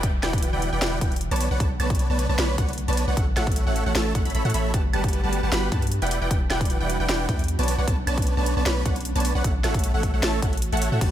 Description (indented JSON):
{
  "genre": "future bass",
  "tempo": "153 BPM",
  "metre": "4/4",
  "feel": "swing 53% on 16ths, half-time",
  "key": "B minor",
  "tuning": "A4 = 439 Hz",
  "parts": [
    { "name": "airy breathy pad", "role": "sustained chords", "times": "0.0-11.1 s", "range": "C#3 to G4", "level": "-35 LUFS", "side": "right 2 dB", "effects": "chorus, vintage 12-bit sampler grit, sidechain pumping" },
    { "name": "wide unison pluck", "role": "arpeggios", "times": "0.0-11.1 s", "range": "F#5 to B5", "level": "-34 LUFS", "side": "equal", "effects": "sidechain pumping, ping-pong delay" },
    { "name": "dense compressed supersaw", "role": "riff", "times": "0.0-11.1 s", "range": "G3 to B5", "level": "-28 LUFS", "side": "right 1 dB", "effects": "sidechain pumping, ping-pong delay" },
    { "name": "long sustained 808-style bass", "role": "bass", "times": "0.0-11.1 s", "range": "E1 to A2", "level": "-26 LUFS", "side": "equal", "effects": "sidechain pumping" },
    { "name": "electronic kick drum", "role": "drums", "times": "0.0-11.1 s", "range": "none", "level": "-24 LUFS", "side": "equal", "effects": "none" },
    { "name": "trap drum kit", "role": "drums", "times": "0.0-11.1 s", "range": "crash cymbal, hi-hat, snare drum, woodblock", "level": "-29 LUFS", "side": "equal", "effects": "overdrive" },
    { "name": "downlifter", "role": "sound effects", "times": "0.0-1.6 s", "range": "none", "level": "-46 LUFS", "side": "equal", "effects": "none" },
    { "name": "bell-like tine electric piano", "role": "accompaniment", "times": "11.0-11.1 s", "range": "none", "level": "barely audible", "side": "none", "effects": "none" }
  ],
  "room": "digital ambience",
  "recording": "none",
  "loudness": "-21 LUFS",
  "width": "side -11 dB against mid",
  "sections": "0.0-11.1 A section",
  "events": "kick drops out 10.6-11.0",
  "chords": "0.0 Em9; 1.4 Bm9; 3.2 F#m7/A; 4.7 Gmaj9; 6.1 Em9; 7.7 Bm9; 9.4 F#m7/A"
}